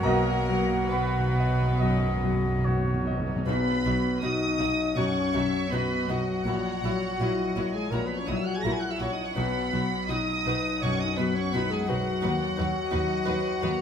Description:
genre	classical, romantic movement for piano and orchestra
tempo	67-87 BPM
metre	4/4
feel	rubato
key	B major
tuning	A4 = 445 Hz
part	clear grand piano	melody	0.0-13.8 s	A#1 to B5	-30 LUFS	left 3 dB	none
part	dark studio violin section	melody	0.0-13.8 s	B3 to A#6	-33 LUFS	right 2 dB	none
part	clear clarinet	second line	0.0-13.8 s	F#4 to A#5	-34 LUFS	left 1 dB	none
part	concert flute	second line	0.0-3.1 s	F#5	-34 LUFS	equal	none
part	warm oboe	second line	0.0-3.5 s	B4 to D#5	-37 LUFS	right 1 dB	none
part	warm studio violin section	second line	0.0-13.8 s	A#4 to F#5	-37 LUFS	equal	none
part	rich studio viola section	accompaniment	0.0-13.7 s	A#3 to B4	-37 LUFS	right 1 dB	none
part	dark French horn section	sustained chords	0.0-13.8 s	F#3 to A#4	-32 LUFS	left 2 dB	none
part	dark trumpet section	stabs	0.0-2.1 s	D#5	-36 LUFS	right 1 dB	none
part	dark symphonic double bass section	bass	0.0-13.7 s	A#1 to D#2	-34 LUFS	right 2 dB	none
part	warm studio cello section	bass	0.0-13.7 s	D#2 to B2	-33 LUFS	right 1 dB	none
part	timpani	percussion	0.0-3.4 s	B2	-32 LUFS	right 1 dB	none
room	wet stone room reverb, RT60 1.4 s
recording	none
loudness	-24 LUFS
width	side -8 dB against mid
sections	0.0-3.5 A section; 3.5-13.8 B section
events	timpani fill 0.0-3.5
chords	0.0 B; 6.5 F#7/A#; 9.3 B; 12.2 B/D#

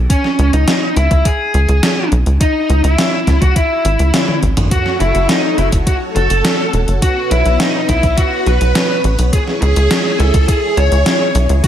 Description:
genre	synthwave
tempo	104 BPM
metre	4/4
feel	straight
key	C# minor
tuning	A4 = 441 Hz
part	tight sequencer bass	bass	0.0-11.6 s	E1 to C#2	-13 LUFS	equal	none
part	smooth overdriven lead guitar	melody	0.1-11.7 s	C#4 to C#5	-17 LUFS	equal	digital delay
part	electronic kick drum	drums	0.1-11.7 s	none	-15 LUFS	equal	overdrive
part	gated 80s digital drum machine	drums	0.1-11.7 s	hi-hat, snare drum, toms	-17 LUFS	equal	gated reverb, gated reverb snare, overdrive
part	string machine, violins	second line	4.7-11.7 s	D#4 to C#5	-23 LUFS	equal	ensemble chorus, digital delay
part	string machine, full ensemble	sustained chords	4.7-11.7 s	B3 to F#5	-22 LUFS	equal	phaser, ensemble chorus, sidechain pumping
room	light reverb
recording	none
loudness	-11 LUFS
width	side -10 dB against mid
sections	0.0-4.7 A section; 4.7-11.7 B section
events	drum fill 4.1-4.7; band accent 4.1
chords	0.1 C#m; 4.7 F#m; 7.0 Bsus2; 9.3 C#m

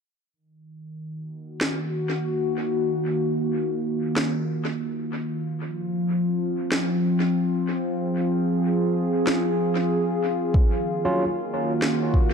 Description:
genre	ambient dub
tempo	94 BPM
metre	4/4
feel	swing 59% on 16ths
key	Eb minor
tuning	A4 = 441 Hz
part	warbly tape-like pad	sustained chords	0.3-12.3 s	Eb3 to Ab4	-23 LUFS	equal	chorus, built-in reverb
part	electronic snare drum	drums	1.6-12.0 s	none	-29 LUFS	equal	dub echo
part	electronic kick drum	drums	10.5-12.3 s	none	-18 LUFS	equal	none
part	barky tine electric piano	stabs	11.1-11.2 s	Gb3 to F4	-26 LUFS	right 1 dB	dub echo
room	moderate plate reverb, RT60 1.7 s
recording	echo-heavy mix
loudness	-22 LUFS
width	side -6 dB against mid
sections	0.3-12.3 A section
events	filter sweep on ambient pad 0.3-12.3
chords	0.3 Ebm; 5.4 Fm; 10.5 Ebm

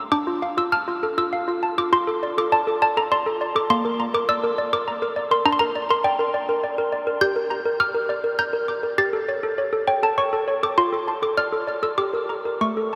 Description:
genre	classical, lullaby for handbells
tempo	101 BPM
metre	3/4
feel	rubato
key	D minor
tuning	A4 = 441 Hz
part	malleted handbells	solo	0.0-13.0 s	A3 to A6	-22 LUFS	equal	delay
room	wet huge ambient reverb, RT60 8.0 s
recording	dreamy mix soaked in reverb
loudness	-22 LUFS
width	mono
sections	0.1-13.0 A section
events	none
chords	0.1 Dm; 1.9 Dm/F; 3.7 Bb; 5.5 Bb/D; 7.2 Gm; 9.0 A7/G; 10.8 Dm/F; 12.0 Gm

